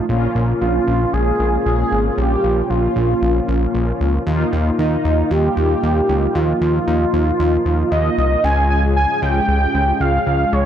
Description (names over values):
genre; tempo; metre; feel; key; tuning
synth-pop; 115 BPM; 4/4; straight; unclear; A4 = 440 Hz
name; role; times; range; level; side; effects
mellow synth brass; accompaniment; 0.0-10.7 s; Ab3 to Ab4; -21 LUFS; left 1 dB; chorus
fat analog bass; bass; 0.1-10.7 s; Ab1 to Eb2; -18 LUFS; equal; none
wide unison lead; melody; 0.6-10.7 s; Eb4 to Ab5; -18 LUFS; right 1 dB; tape echo
room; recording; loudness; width
moderate recital hall reverb, RT60 1.6 s; dark, warm production; -15 LUFS; side -9 dB against mid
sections
0.0-8.4 A section; 8.4-10.7 B section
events
none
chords
0.1 Bbm; 4.3 Ebsus2; 8.4 Db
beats
| 0.09 0.61 1.14 1.66 | 2.18 2.70 3.22 3.74 | 4.26 4.79 5.31 5.83 | 6.35 6.87 7.40 7.92 | 8.44 8.96 9.48 10.00 | 10.53